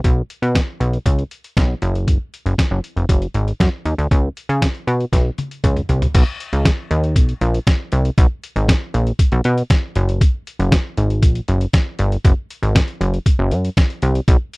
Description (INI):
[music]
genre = early-eighties boogie funk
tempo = 118 BPM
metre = 4/4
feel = straight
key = unclear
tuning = A4 = 440 Hz
[part]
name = plucky analog bass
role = bass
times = 0.0-14.4 s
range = F1 to C#3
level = -17 LUFS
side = equal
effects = none
[part]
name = lo-fi sampler-style drum kit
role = drums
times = 0.0-14.6 s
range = crash cymbal, hi-hat, kick drum, snare drum, toms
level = -15 LUFS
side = equal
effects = none
[sound]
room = little or no reverb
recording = dry, close 1970s-style studio recording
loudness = -15 LUFS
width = side -30 dB against mid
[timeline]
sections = 0.0-6.1 A section; 6.1-14.6 B section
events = drum fill 5.1-6.1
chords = none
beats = | 0.04 0.55 1.06 1.57 | 2.08 2.58 3.09 3.60 | 4.11 4.62 5.13 5.63 | 6.14 6.65 7.16 7.67 | 8.18 8.69 9.19 9.70 | 10.21 10.72 11.23 11.74 | 12.24 12.75 13.26 13.77 | 14.28